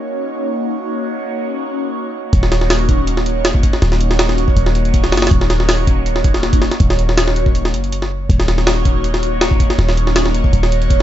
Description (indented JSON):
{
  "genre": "drum and bass, jungle",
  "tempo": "161 BPM",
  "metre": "4/4",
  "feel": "swing 53% on 16ths",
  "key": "Eb minor",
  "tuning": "A4 = 440 Hz",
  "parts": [
    { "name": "airy breathy pad", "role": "sustained chords", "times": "0.0-11.0 s", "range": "Bb3 to Db5", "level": "-20 LUFS", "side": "right 1 dB", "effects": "chorus, phaser, vintage 12-bit sampler grit" },
    { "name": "warm 808-style bass", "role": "bass", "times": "2.3-11.0 s", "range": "Eb1 to Gb1", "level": "-16 LUFS", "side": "equal", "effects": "none" },
    { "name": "jungle sampler-style drum kit", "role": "drums", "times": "2.3-11.0 s", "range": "hi-hat, kick drum, snare drum", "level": "-15 LUFS", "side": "equal", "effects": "none" }
  ],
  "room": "little or no reverb",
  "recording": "nothing above 7.9 kHz",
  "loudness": "-13 LUFS",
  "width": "side -12 dB against mid",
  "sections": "0.0-2.3 A section; 2.3-11.0 B section",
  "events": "drop 2.3-11.0",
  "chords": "0.0 Ebm7",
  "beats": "0.10 0.47 | 0.84 1.21 1.59 1.96 | 2.33 2.70 3.08 3.45 | 3.82 4.20 4.57 4.94 | 5.31 5.68 6.06 6.43 | 6.80 7.18 7.55 7.92 | 8.29 8.67 9.04 9.41 | 9.79 10.16 10.53 10.90"
}